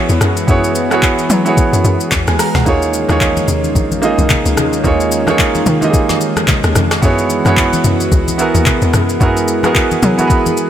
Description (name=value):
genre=amapiano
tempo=110 BPM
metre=4/4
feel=swing 58% on 16ths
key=unclear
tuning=A4 = 440 Hz
part: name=clear grand piano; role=accompaniment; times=0.0-10.7 s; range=Bb3 to Bb5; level=-15 LUFS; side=right 3 dB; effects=none
part: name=lush unison pad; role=sustained chords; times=0.0-10.7 s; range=Eb3 to Ab4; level=-19 LUFS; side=left 1 dB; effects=chorus, sidechain pumping
part: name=tight log drum bass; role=bass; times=0.1-10.3 s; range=Bb1 to Gb3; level=-16 LUFS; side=left 1 dB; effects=none
part: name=smooth R&B drum kit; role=drums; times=0.1-10.7 s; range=handclaps, hi-hat, kick drum, rim click, shaker, snare drum, toms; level=-16 LUFS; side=left 1 dB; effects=none
part: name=congas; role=percussion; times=3.1-10.6 s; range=none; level=-22 LUFS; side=left 4 dB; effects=none
room=light reverb, digital ambience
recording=none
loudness=-11 LUFS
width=side -10 dB against mid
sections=0.0-10.7 A section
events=none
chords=0.0 Gb9sus4; 2.7 Eb9sus4; 7.0 Gb9sus4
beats=| 0.48 1.03 1.57 2.12 | 2.66 3.21 3.75 4.30 | 4.84 5.39 5.94 6.48 | 7.03 7.57 8.12 8.66 | 9.21 9.75 10.30